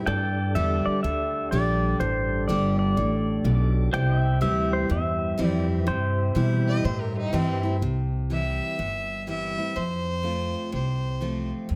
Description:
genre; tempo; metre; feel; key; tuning
honky-tonk and classic country; 124 BPM; 4/4; swing 64% on 8ths; C major; A4 = 436 Hz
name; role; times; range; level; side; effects
picked steel-string acoustic guitar; accompaniment; 0.0-11.8 s; F2 to G4; -31 LUFS; equal; none
tonewheel organ; accompaniment; 0.0-7.8 s; D4 to D6; -36 LUFS; equal; slow rotary speaker
pedal steel guitar; sustained chords; 0.0-7.8 s; A4 to G5; -40 LUFS; equal; none
upright bass; bass; 0.0-11.8 s; G1 to B2; -28 LUFS; equal; none
pedal steel guitar; melody; 0.1-7.3 s; C5 to G5; -31 LUFS; equal; none
clear fiddle; second line; 6.7-11.5 s; C4 to E5; -33 LUFS; equal; none
room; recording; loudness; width
moderate large studio reverb, RT60 1.4 s; none; -25 LUFS; mono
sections
0.0-7.8 A section; 7.8-11.8 B section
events
tonewheel organ fill 3.2-3.9; fiddle solo 7.8-11.8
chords
0.1 Gsus2; 3.9 C; 9.8 F

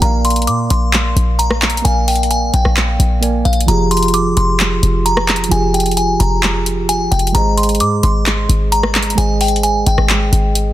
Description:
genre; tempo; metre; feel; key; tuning
hip hop, trap; 131 BPM; 4/4; half-time; F dorian; A4 = 439 Hz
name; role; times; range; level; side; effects
delicate synth tine bell; melody; 0.0-10.7 s; F5 to D6; -18 LUFS; left 1 dB; chorus
muted felt-like synth keys; accompaniment; 0.0-10.7 s; F3 to Ab5; -20 LUFS; right 4 dB; chorus
short 808-style bass; bass; 0.0-10.7 s; F1 to Bb2; -16 LUFS; equal; none
trap drum kit; drums; 0.0-10.7 s; handclaps, hi-hat, rim click; -18 LUFS; equal; overdrive
room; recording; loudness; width
little or no reverb; dense, heavily limited modern master; -12 LUFS; side -13 dB against mid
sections
0.0-10.7 A section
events
none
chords
0.0 Bb; 3.7 Fmadd9; 7.3 Ab

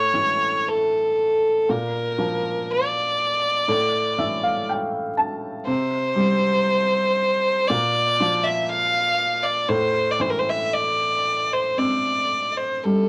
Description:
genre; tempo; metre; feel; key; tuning
celtic folk, Celtic slow air; 55-62 BPM; 4/4; rubato; unclear; A4 = 441 Hz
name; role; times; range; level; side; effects
rich fiddle; melody; 0.0-13.1 s; A4 to F5; -23 LUFS; equal; none
felt-muted upright piano; accompaniment; 0.0-13.1 s; A2 to A5; -28 LUFS; equal; none
room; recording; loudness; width
moderate studio reverb, RT60 0.6 s; vinyl crackle; -22 LUFS; mono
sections
0.0-13.1 A section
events
felt piano fill 3.7-5.7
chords
0.0 A; 1.7 Bb; 3.7 A5; 5.7 C5; 7.7 Bb5; 9.7 Am

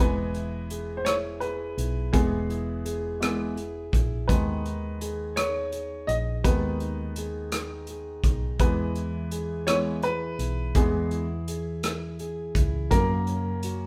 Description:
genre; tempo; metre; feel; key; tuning
six-eight pop ballad; 56 BPM (dotted quarters); 6/8; straight; unclear; A4 = 443 Hz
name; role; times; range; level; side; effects
clear upright piano; accompaniment; 0.0-13.9 s; C#3 to D#5; -32 LUFS; equal; none
fingerpicked plugged-in steel-string acoustic guitar; arpeggios; 0.0-13.9 s; E3 to G#4; -38 LUFS; equal; none
woody fretless electric bass; bass; 0.0-13.9 s; E1 to F#2; -34 LUFS; equal; none
modern studio drum kit; drums; 0.3-13.8 s; hi-hat, kick drum, rim click; -28 LUFS; equal; none
room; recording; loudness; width
moderate stone room reverb, RT60 1.2 s; band playing live in one room; -27 LUFS; mono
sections
0.0-13.9 A section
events
upright piano solo 0.0-13.9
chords
0.0 E; 4.3 G#m; 8.6 E; 12.9 F#

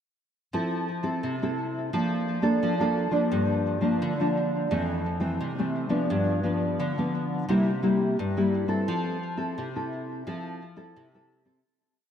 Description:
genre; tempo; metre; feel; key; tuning
samba; 86 BPM; 4/4; straight; F major; A4 = 439 Hz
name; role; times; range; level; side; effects
nylon-string guitar; solo; 0.5-11.6 s; F2 to A4; -24 LUFS; equal; analog chorus, ping-pong delay
room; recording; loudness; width
moderate lush hall reverb, RT60 1.9 s; dreamy mix soaked in reverb; -24 LUFS; side -8 dB against mid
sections
0.5-11.7 A section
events
fade-out 8.9-11.7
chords
0.5 Fmaj7; 1.9 Bbmaj7/F; 3.3 Gm7; 4.7 Fmaj7; 6.1 G7; 7.5 C7; 8.9 Fmaj7

